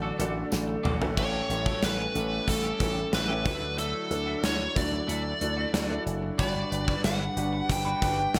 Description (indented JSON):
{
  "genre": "1980s-style pop",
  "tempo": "92 BPM",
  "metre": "4/4",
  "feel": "straight",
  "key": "D major",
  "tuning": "A4 = 441 Hz",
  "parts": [
    { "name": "biting lead guitar", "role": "melody", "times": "0.0-8.4 s", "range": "A4 to G5", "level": "-34 LUFS", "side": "equal", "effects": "overdrive, delay" },
    { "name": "warm concert grand piano", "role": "accompaniment", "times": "0.0-8.4 s", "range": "G2 to B4", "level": "-37 LUFS", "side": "equal", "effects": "lush chorus" },
    { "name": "warm analog pad", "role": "sustained chords", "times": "0.0-8.4 s", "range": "D3 to B4", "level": "-40 LUFS", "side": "equal", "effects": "chorus" },
    { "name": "twelve-string electric guitar", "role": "riff", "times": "0.0-8.4 s", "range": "A3 to B4", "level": "-42 LUFS", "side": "equal", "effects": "subtle chorus" },
    { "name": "slap bass with an envelope filter", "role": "bass", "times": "0.0-8.4 s", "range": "F#1 to D2", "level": "-35 LUFS", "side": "equal", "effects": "none" },
    { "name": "gated 80s drum kit", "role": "drums", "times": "0.2-8.4 s", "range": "crash cymbal, hi-hat, kick drum, snare drum, toms", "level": "-32 LUFS", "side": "equal", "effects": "gated reverb" },
    { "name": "tambourine", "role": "percussion", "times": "0.5-0.7 s", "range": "none", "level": "-42 LUFS", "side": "equal", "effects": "none" }
  ],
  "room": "moderate plate reverb, RT60 1.3 s, small room ambience",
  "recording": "bright 1980s-style digital production",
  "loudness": "-28 LUFS",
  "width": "mono",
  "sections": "0.0-1.2 A section; 1.2-8.4 B section",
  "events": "drum fill 0.5-1.2",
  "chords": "0.0 D/A; 1.2 A7; 3.5 Dadd9; 6.4 Gmaj7",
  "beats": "0.52 | 1.17 1.82 2.48 3.13 | 3.78 4.43 5.08 5.74 | 6.39 7.04 7.69 8.35"
}